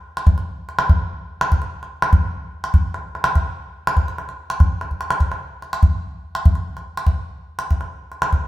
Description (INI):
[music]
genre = west african traditional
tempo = 97 BPM (dotted quarters)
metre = 12/8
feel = straight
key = none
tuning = none
[part]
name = calabash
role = percussion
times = 0.2-8.4 s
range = none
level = -17 LUFS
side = equal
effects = none
[sound]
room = wet stone room reverb, RT60 1.3 s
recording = band playing live in one room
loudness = -18 LUFS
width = side -16 dB against mid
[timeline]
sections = 0.0-8.5 A section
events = drum fill 4.9-5.2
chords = none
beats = | 0.27 0.89 1.51 2.12 | 2.74 3.36 3.98 4.59 | 5.21 5.83 6.45 7.07 | 7.68 8.30